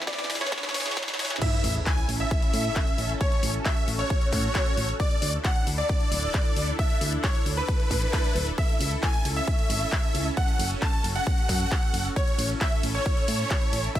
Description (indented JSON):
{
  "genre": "uplifting trance",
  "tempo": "134 BPM",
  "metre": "4/4",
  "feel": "straight",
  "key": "A major",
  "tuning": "A4 = 441 Hz",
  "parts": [
    { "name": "lush unison pad", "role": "sustained chords", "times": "0.0-14.0 s", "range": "E3 to B5", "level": "-34 LUFS", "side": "equal", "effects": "chorus, phaser, sidechain pumping" },
    { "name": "wide unison pluck", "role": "arpeggios", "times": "0.0-1.3 s", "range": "E2 to B3", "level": "-45 LUFS", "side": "right 4 dB", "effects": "none" },
    { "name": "punchy analog drum machine", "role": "drums", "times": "0.0-14.0 s", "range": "crash cymbal, handclaps, hi-hat, ride cymbal, snare drum", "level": "-32 LUFS", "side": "left 1 dB", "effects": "high-pass filter on snare, sidechain pumping on hats, high-pass filter on hats, sidechain pumping on cymbals, high-pass filter on cymbals" },
    { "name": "riser and sub drop", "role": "sound effects", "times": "0.0-3.2 s", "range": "none", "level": "-34 LUFS", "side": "equal", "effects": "none" },
    { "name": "supersaw chords", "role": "melody", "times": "0.1-14.0 s", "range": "B4 to A5", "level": "-30 LUFS", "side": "right 1 dB", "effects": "sidechain pumping, ping-pong delay" },
    { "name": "clear concert grand piano", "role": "second line", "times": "0.1-14.0 s", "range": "B4 to A5", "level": "-36 LUFS", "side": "equal", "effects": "none" },
    { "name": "electronic kick drum", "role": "drums", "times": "0.1-14.0 s", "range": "none", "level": "-25 LUFS", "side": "equal", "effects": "none" },
    { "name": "solid FM bass", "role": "bass", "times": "1.6-13.9 s", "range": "D1 to A2", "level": "-29 LUFS", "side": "equal", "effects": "sidechain pumping" }
  ],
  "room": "little or no reverb",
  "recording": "high-pass filter",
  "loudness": "-23 LUFS",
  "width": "side -12 dB against mid",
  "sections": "0.0-1.4 A section; 1.4-14.0 B section",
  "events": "build-up 0.0-1.4; drum fill 0.0-1.4; riser 0.0-1.4; drop 1.4-14.0; impact 1.4-3.2",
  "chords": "0.0 E; 1.4 A; 5.0 Dsus2; 8.6 A/C#; 10.4 F#m; 12.2 A",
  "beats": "0.07 0.52 0.97 | 1.42 1.86 2.31 2.76 | 3.21 3.65 4.10 4.55 | 5.00 5.45 5.89 6.34 | 6.79 7.24 7.68 8.13 | 8.58 9.03 9.48 9.92 | 10.37 10.82 11.27 11.71 | 12.16 12.61 13.06 13.51 | 13.95"
}